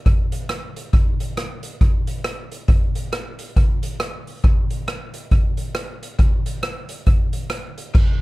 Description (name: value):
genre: ska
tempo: 137 BPM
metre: 4/4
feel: swing 60% on 8ths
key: none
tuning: none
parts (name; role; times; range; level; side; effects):
- street-band drum kit; drums; 0.1-8.1 s; crash cymbal, hi-hat, kick drum, rim click; -18 LUFS; equal; none
room: little or no reverb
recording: dark, warm production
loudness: -19 LUFS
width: side -20 dB against mid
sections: 0.0-7.9 A section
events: none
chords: none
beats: 0.06 0.50 | 0.93 1.37 1.81 2.25 | 2.68 3.12 3.56 4.00 | 4.44 4.88 5.31 5.75 | 6.19 6.63 7.07 7.51 | 7.95